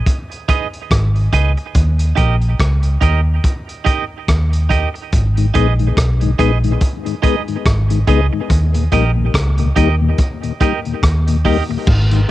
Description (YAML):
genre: dub reggae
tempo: 71 BPM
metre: 4/4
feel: swing 58% on 16ths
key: unclear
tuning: A4 = 440 Hz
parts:
  - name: crunchy breakbeat drum kit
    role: drums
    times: 0.1-12.3 s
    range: crash cymbal, hi-hat, kick drum, rim click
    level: -18 LUFS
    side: equal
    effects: none
  - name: clean electric guitar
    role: accompaniment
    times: 0.5-11.7 s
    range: D#4 to D#5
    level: -22 LUFS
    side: right 9 dB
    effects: cassette tape, dub echo
  - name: vintage muted fingered electric bass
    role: bass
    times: 0.9-12.2 s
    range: G#1 to D#2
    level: -14 LUFS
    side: equal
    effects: none
  - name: mellow tonewheel organ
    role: accompaniment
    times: 5.4-12.3 s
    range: D#2 to D#4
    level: -20 LUFS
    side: left 7 dB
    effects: chorus vibrato, slow rotary speaker, cassette tape, dub echo
room: studio ambience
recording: home recording on cassette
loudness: -13 LUFS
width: side -15 dB against mid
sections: 0.0-11.9 A section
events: break 0.0-5.1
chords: 0.0 G#m; 1.8 D#; 5.1 G#m; 8.5 D#